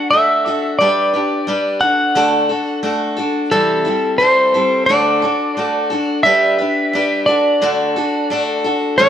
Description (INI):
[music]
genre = rock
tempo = 88 BPM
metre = 4/4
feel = straight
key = D mixolydian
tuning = A4 = 439 Hz
[part]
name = clean lap steel guitar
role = melody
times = 0.0-9.1 s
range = A4 to F#5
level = -15 LUFS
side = equal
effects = analog delay
[part]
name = picked steel-string acoustic guitar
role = accompaniment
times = 0.0-9.1 s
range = A2 to B4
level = -17 LUFS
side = equal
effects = none
[sound]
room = moderate large studio reverb, RT60 0.9 s, small room ambience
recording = none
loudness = -13 LUFS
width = side -9 dB against mid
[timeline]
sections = 0.0-9.0 A section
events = none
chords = 0.0 D; 0.8 G; 1.8 D; 3.5 C6; 4.9 D; 6.3 G; 7.3 D